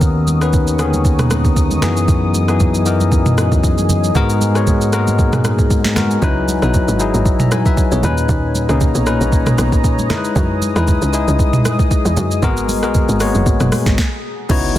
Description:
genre	amapiano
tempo	116 BPM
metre	4/4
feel	swing 55% on 16ths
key	unclear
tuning	A4 = 439 Hz
part	bell-like tine electric piano	accompaniment	0.0-14.8 s	A#2 to A#5	-18 LUFS	left 3 dB	none
part	deep dark ambient pad	sustained chords	0.0-14.8 s	C#3 to E6	-25 LUFS	left 1 dB	chorus, built-in reverb
part	fat analog bass	bass	0.0-6.2 s	D#2 to G#2	-17 LUFS	equal	none
part	smooth R&B drum kit	drums	0.0-14.8 s	crash cymbal, hi-hat, kick drum, rim click, shaker, snare drum, toms	-16 LUFS	right 1 dB	overdrive
part	congas	percussion	0.0-14.8 s	none	-25 LUFS	right 4 dB	none
part	tight log drum bass	bass	6.2-14.8 s	F#1 to F#2	-18 LUFS	equal	none
part	impact	sound effects	14.6-14.8 s	none	-21 LUFS	right 1 dB	none
room	little or no reverb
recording	dense, heavily limited modern master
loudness	-12 LUFS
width	side -13 dB against mid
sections	0.0-14.5 A section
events	stop 14.0-14.5; impact 14.5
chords	0.0 Bmaj9/D#; 1.8 F#13sus4; 4.2 G#m9; 6.2 C#m11; 8.0 Bmaj9; 10.1 F#13sus4; 12.4 G#m9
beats	| 0.01 0.53 1.05 1.57 | 2.08 2.60 3.12 3.64 | 4.15 4.67 5.19 5.71 | 6.22 6.74 7.26 7.77 | 8.29 8.81 9.33 9.84 | 10.36 10.88 11.39 11.91 | 12.43 12.95 13.46 13.98 | 14.50

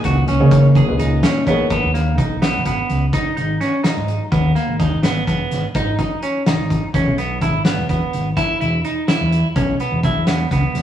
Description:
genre	progressive instrumental, band music in an uneven meter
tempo	252 BPM (eighths)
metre	11/8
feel	straight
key	G# minor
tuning	A4 = 440 Hz
part	dark grand piano	accompaniment	0.0-1.7 s	A#2 to C#5	-20 LUFS	left 2 dB	none
part	clean electric guitar	arpeggios	0.0-10.8 s	A#3 to G#4	-21 LUFS	right 2 dB	phaser
part	overdriven fingered electric bass	bass	0.0-10.8 s	E1 to C#3	-18 LUFS	equal	none
part	loose indie drum kit	drums	0.0-10.8 s	hi-hat, kick drum, snare drum	-21 LUFS	left 1 dB	none
room	moderate stone room reverb, RT60 1.0 s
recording	rough rehearsal-room recording, studio reverb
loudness	-15 LUFS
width	side -10 dB against mid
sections	0.0-1.7 A section; 1.7-10.8 B section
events	none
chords	0.0 C#sus2; 1.7 G#m; 6.9 E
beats	0.05 0.28 0.52 0.76 1.00 1.24 1.47 | 1.71 1.95 2.19 2.43 2.66 2.90 3.14 3.38 3.62 3.85 4.09 | 4.33 4.57 4.80 5.04 5.28 5.52 5.76 6.00 6.23 6.47 6.71 | 6.95 7.18 7.42 7.66 7.90 8.13 8.37 8.61 8.85 9.09 9.32 | 9.56 9.80 10.04 10.27 10.51 10.75

